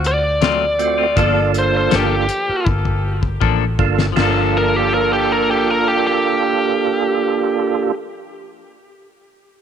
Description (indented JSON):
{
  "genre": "straight-eighth soul blues",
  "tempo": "80 BPM",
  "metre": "4/4",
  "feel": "straight",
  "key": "G minor",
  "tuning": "A4 = 440 Hz",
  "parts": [
    { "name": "warm horn section", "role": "sustained chords", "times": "0.0-7.9 s", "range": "Bb3 to A4", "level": "-26 LUFS", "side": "left 2 dB", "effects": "none" },
    { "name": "vintage muted fingered electric bass", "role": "bass", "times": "0.0-8.6 s", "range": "G1 to D2", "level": "-21 LUFS", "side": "equal", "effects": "none" },
    { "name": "cloth-damped thuddy drum kit", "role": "drums", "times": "0.0-4.3 s", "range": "crash cymbal, hi-hat, kick drum, snare drum", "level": "-21 LUFS", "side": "left 4 dB", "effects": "none" },
    { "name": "biting lead guitar", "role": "melody", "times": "0.1-7.9 s", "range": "G4 to D5", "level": "-19 LUFS", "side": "left 1 dB", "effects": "overdrive" },
    { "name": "clean electric guitar", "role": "stabs", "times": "0.4-8.7 s", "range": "F3 to A4", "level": "-23 LUFS", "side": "left 13 dB", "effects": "none" },
    { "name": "percussive tonewheel organ", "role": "accompaniment", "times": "0.8-7.9 s", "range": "A3 to A4", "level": "-20 LUFS", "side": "right 10 dB", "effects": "slow rotary speaker, chorus vibrato" }
  ],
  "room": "light reverb, small room ambience",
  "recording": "1960s-style stereo with parts hard left and right",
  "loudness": "-14 LUFS",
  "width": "side -8 dB against mid",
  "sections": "0.0-4.2 A section; 4.2-7.2 B section",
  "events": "drum fill 2.7-4.2",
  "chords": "0.0 D7#9; 1.2 Gm9",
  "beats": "0.42 | 1.17 1.92 2.67 3.41 | 4.16 4.91 5.66 6.41"
}